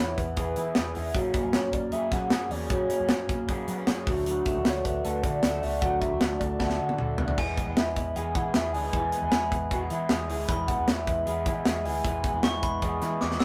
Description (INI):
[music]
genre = jangly indie pop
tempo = 154 BPM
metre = 4/4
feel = straight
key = E mixolydian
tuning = A4 = 439 Hz
[part]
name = warbly nostalgic lead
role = melody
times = 0.0-13.0 s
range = B4 to G#5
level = -34 LUFS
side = equal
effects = chorus
[part]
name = electric guitar through a small old amp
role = accompaniment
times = 0.0-13.4 s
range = E2 to G#4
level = -37 LUFS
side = equal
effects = phaser
[part]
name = electric guitar through a small old amp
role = arpeggios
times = 0.0-13.4 s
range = E3 to A4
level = -34 LUFS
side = equal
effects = none
[part]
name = vintage muted fingered electric bass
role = bass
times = 0.0-13.4 s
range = C#2 to F#3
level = -37 LUFS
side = equal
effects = none
[part]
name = modern studio drum kit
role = drums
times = 0.2-13.4 s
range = hi-hat, kick drum, snare drum, splash cymbal, toms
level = -31 LUFS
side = equal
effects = none
[part]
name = glockenspiel with hard plastic mallets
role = second line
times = 7.4-13.4 s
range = G#5 to E6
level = -39 LUFS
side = equal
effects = none
[sound]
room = moderate small room reverb, RT60 0.5 s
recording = rough rehearsal-room recording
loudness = -27 LUFS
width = mono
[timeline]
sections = 0.0-13.4 A section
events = drum fill 6.6-7.4, 13.2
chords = 0.0 E; 1.1 F#add9; 4.1 D; 7.4 E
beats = 0.37 0.76 | 1.15 1.54 1.93 2.32 | 2.71 3.10 3.48 3.87 | 4.26 4.65 5.04 5.43 | 5.82 6.21 6.60 6.99 | 7.37 7.76 8.15 8.54 | 8.93 9.32 9.71 10.10 | 10.49 10.88 11.27 11.66 | 12.04 12.43 12.82 13.21